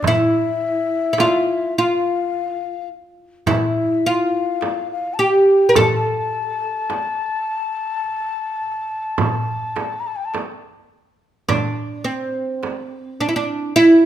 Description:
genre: Arabic maqam ensemble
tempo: 105 BPM (eighths)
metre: 10/8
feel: straight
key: A maqam bayati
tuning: A4 = 440 Hz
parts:
  - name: oud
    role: melody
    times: 0.0-14.1 s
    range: C4 to Bb4+50c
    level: -16 LUFS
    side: right 1 dB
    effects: none
  - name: breathy mellow ney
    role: second line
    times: 0.0-10.3 s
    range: E5 to Bb5+50c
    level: -23 LUFS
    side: left 5 dB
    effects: none
  - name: darbuka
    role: percussion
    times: 0.0-13.6 s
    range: none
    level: -26 LUFS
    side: left 1 dB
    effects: none
  - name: frame drum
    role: percussion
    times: 0.0-12.9 s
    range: none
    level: -24 LUFS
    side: right 5 dB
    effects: none
room: light reverb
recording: minimal, uncompressed stereo recording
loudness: -18 LUFS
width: side -11 dB against mid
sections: 0.0-11.5 A section; 11.5-14.1 B section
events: none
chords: none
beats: | 0.04 0.61 1.19 1.76 2.33 2.90 3.47 4.05 4.62 5.19 | 5.76 6.33 6.91 7.48 8.05 8.62 9.20 9.77 10.34 10.91 | 11.49 12.06 12.63 13.21 13.78

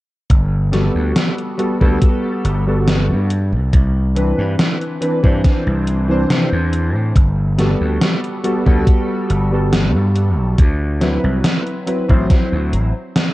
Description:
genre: vaporwave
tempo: 70 BPM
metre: 4/4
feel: straight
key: G major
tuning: A4 = 438 Hz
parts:
  - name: gritty slap bass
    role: bass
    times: 0.3-12.9 s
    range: G1 to C3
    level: -17 LUFS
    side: equal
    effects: overdrive
  - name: electronic kick drum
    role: drums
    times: 0.3-12.5 s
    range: none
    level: -12 LUFS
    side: equal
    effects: small room ambience
  - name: gated 80s digital drum machine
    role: drums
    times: 0.3-13.3 s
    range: hi-hat, snare drum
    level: -19 LUFS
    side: equal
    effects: gated reverb, gated reverb snare, small room ambience
  - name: warm electric grand piano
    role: accompaniment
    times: 0.7-12.9 s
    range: E3 to C5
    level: -19 LUFS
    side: equal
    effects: ensemble chorus, tape echo
room: digital ambience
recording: dark, warm production, cassette tape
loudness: -14 LUFS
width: side -17 dB against mid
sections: 0.3-13.3 A section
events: none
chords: 0.3 Gmaj9; 3.3 Cmaj9; 7.2 Gmaj9; 10.6 D13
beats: | 0.30 1.16 2.02 2.87 | 3.73 4.59 5.44 6.30 | 7.16 8.02 8.87 9.73 | 10.59 11.44 12.30 13.16

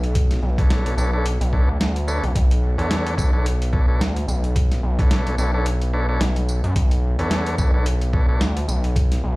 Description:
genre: glitch hop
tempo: 109 BPM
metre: 4/4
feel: swing 56% on 16ths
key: B minor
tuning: A4 = 440 Hz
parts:
  - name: gritty driven synth bass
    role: bass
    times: 0.0-9.4 s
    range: B1 to F#2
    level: -21 LUFS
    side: equal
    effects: tube saturation
  - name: boom bap sampler-style drum kit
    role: drums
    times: 0.0-9.2 s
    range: hi-hat, rim click, snare drum, tambourine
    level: -27 LUFS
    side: equal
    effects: none
  - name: electronic kick drum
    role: drums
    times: 0.2-9.1 s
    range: none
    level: -18 LUFS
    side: equal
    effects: none
  - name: tonewheel organ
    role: stabs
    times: 0.6-8.4 s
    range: D4 to C#5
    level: -28 LUFS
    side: equal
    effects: overdrive, sidechain pumping, tape echo
room: little or no reverb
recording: played on a big sound system in a bare room, large studio reverb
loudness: -18 LUFS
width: side -22 dB against mid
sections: 0.0-9.4 A section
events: none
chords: 0.0 Bm9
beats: | 0.15 0.70 1.25 1.80 | 2.35 2.90 3.46 4.01 | 4.56 5.11 5.66 6.21 | 6.76 7.31 7.86 8.41 | 8.96

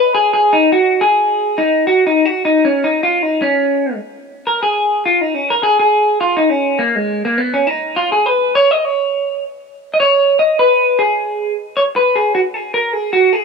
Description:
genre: indie pop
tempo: 103 BPM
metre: 4/4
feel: swing 55% on 16ths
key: G# dorian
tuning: A4 = 443 Hz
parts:
  - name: electric guitar through a small old amp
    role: solo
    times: 0.0-13.4 s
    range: G#3 to D#5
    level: -12 LUFS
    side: equal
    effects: lush chorus, warbly pitch drift
room: moderate plate reverb, RT60 2.8 s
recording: rough home demo mix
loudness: -12 LUFS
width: side -5 dB against mid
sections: 0.0-13.4 A section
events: clean electric guitar solo 0.0-13.4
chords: none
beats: 0.14 | 0.71 1.29 1.87 2.45 | 3.03 3.61 4.19 4.77 | 5.35 5.93 6.51 7.09 | 7.68 8.26 8.84 9.42 | 10.01 10.59 11.18 11.76 | 12.34 12.93

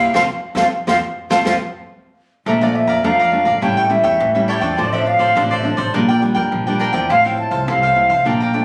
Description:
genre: samba and choro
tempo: 104 BPM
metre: 4/4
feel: straight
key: F major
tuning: A4 = 440 Hz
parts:
  - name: concert flute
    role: melody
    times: 0.0-8.6 s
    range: D5 to A5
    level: -19 LUFS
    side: equal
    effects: none
  - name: cavaquinho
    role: accompaniment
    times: 0.0-8.6 s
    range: D4 to Bb5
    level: -24 LUFS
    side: equal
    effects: none
  - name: nylon-string guitar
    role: accompaniment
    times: 0.0-8.6 s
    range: F2 to G4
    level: -23 LUFS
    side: equal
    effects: none
  - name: upright bass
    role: bass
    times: 0.0-8.6 s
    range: Ab1 to F2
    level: -27 LUFS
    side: equal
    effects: none
  - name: open jazz drum kit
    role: drums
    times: 0.1-1.6 s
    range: kick drum, snare drum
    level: -29 LUFS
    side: equal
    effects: none
room: moderate large studio reverb, RT60 1.0 s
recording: recorded on a phone in the room, club reverb, compression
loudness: -16 LUFS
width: mono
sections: 0.0-2.5 A section; 2.5-8.6 B section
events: band accent 0.1-2.5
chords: 0.1 F; 2.5 Bbmaj7; 3.6 A7; 4.8 Dm7/A; 5.9 Bb6; 7.1 Fmaj7/A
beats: | 0.15 0.73 1.31 1.89 | 2.46 3.04 3.62 4.20 | 4.78 5.36 5.94 6.52 | 7.10 7.68 8.26

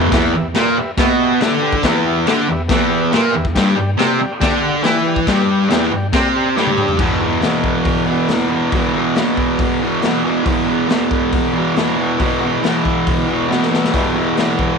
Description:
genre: garage rock duo or trio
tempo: 139 BPM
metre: 4/4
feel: straight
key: E minor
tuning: A4 = 441 Hz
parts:
  - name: combo organ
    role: sustained chords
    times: 0.0-6.9, 13.9-14.7 s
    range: G4 to G5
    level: -26 LUFS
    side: left 1 dB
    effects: none
  - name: fuzz guitar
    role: riff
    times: 0.0-14.8 s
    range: E2 to E4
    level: -15 LUFS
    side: right 1 dB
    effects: distortion
  - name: raw garage drum kit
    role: drums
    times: 0.0-14.7 s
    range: crash cymbal, hi-hat, kick drum, snare drum, toms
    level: -20 LUFS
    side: left 3 dB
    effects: none
room: light reverb, studio reverb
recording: 1960s-style stereo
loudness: -14 LUFS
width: side -5 dB against mid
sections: 0.1-7.0 A section; 7.0-14.8 B section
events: drum fill 6.6-7.0, 13.5-13.9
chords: 0.1 Em; 3.6 G5; 7.0 E5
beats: | 0.12 0.55 0.98 1.41 | 1.84 2.27 2.70 3.13 | 3.56 3.98 4.41 4.84 | 5.27 5.70 6.13 6.56 | 6.99 7.42 7.86 8.29 | 8.72 9.16 9.59 10.03 | 10.46 10.90 11.33 11.77 | 12.20 12.63 13.07 13.50 | 13.94 14.37

